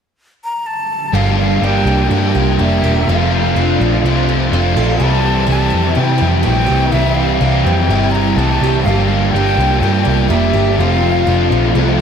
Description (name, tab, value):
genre	rock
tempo	124 BPM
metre	4/4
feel	straight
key	C mixolydian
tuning	A4 = 440 Hz
part	breathy jazz flute	melody	0.4-11.8 s	E5 to Bb5	-20 LUFS	left 1 dB	ping-pong delay
part	picked twelve-string acoustic guitar	arpeggios	1.1-12.0 s	E3 to Bb4	-23 LUFS	right 6 dB	wide subtle chorus, ping-pong delay
part	crunchy overdriven guitar	riff	1.1-12.0 s	F2 to G4	-18 LUFS	left 8 dB	lush chorus
part	overdriven semi-hollow guitar	riff	1.1-12.0 s	F2 to G4	-18 LUFS	right 8 dB	reverse reverb
part	vintage muted picked electric bass	bass	1.1-12.0 s	E1 to C3	-16 LUFS	equal	none
room	wet lush hall reverb, RT60 2.2 s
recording	dreamy mix soaked in reverb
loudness	-12 LUFS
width	side -7 dB against mid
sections	0.0-1.1 A section; 1.1-12.0 B section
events	none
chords	0.0 N.C.; 1.1 Gm7; 3.1 F6; 5.0 C6; 8.9 Gm7; 10.8 F6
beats	0.17 0.66 | 1.14 1.62 2.10 2.58 | 3.07 3.55 4.03 4.51 | 5.00 5.48 5.96 6.45 | 6.93 7.41 7.89 8.37 | 8.86 9.34 9.82 10.30 | 10.79 11.27 11.75